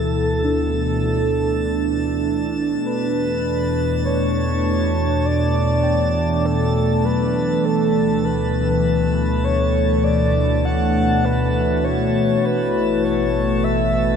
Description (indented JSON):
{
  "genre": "ambient",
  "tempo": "50 BPM",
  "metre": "4/4",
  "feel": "straight",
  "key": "unclear",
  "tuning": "A4 = 440 Hz",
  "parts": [
    { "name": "breathy flute-like synth lead", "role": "melody", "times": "0.0-14.2 s", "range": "A4 to F#5", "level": "-22 LUFS", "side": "equal", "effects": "wide subtle chorus, cassette tape, analog delay" },
    { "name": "warbly tape-like pad", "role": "sustained chords", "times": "0.0-14.2 s", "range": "B2 to D4", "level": "-20 LUFS", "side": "equal", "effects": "chorus, built-in reverb, phaser" },
    { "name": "muted felt-like synth keys", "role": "arpeggios", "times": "0.0-12.5 s", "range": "E3 to A5", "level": "-32 LUFS", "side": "equal", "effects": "none" },
    { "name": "warm sub bass", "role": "bass", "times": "0.0-14.2 s", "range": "A1 to E2", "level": "-24 LUFS", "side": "left 1 dB", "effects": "none" },
    { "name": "drifting glass-harmonics texture", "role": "texture", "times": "0.0-14.2 s", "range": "A5 to A6", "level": "-32 LUFS", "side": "equal", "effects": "chorus, built-in reverb" }
  ],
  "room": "wet huge ambient reverb, RT60 7.8 s",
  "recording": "dreamy mix soaked in reverb",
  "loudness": "-17 LUFS",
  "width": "side -7 dB against mid",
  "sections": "0.0-14.2 A section",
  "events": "none",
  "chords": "0.0 D5; 2.8 Em7; 7.6 D6; 12.4 A",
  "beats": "0.44 1.64 | 2.84 4.04 5.24 6.44 | 7.64 8.84 10.04 11.24 | 12.44 13.64"
}